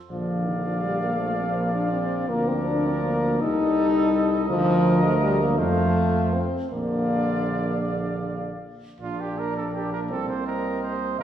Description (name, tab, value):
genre	classical, brass quintet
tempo	54 BPM (dotted quarters)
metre	6/8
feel	straight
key	Bb major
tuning	A4 = 442 Hz
part	mellow cornet	melody	0.1-11.2 s	D5 to F5	-31 LUFS	left 3 dB	none
part	mellow trumpet	second line	0.1-11.2 s	F4 to D5	-31 LUFS	right 4 dB	none
part	clear trombone	accompaniment	0.1-11.2 s	D3 to D4	-32 LUFS	right 2 dB	none
part	dark French horn	accompaniment	0.1-11.2 s	Eb3 to Eb4	-25 LUFS	left 2 dB	none
part	mellow tuba	bass	0.1-11.2 s	Bb1 to F2	-27 LUFS	right 2 dB	none
room	wet recital hall reverb, RT60 1.6 s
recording	recorded in a church or concert hall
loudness	-21 LUFS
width	side -10 dB against mid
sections	0.0-9.0 A section; 9.0-11.2 A section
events	none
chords	0.1 Bb; 2.3 Bb/D; 3.4 Cm6; 4.5 Bb/D; 5.6 F; 6.7 Bb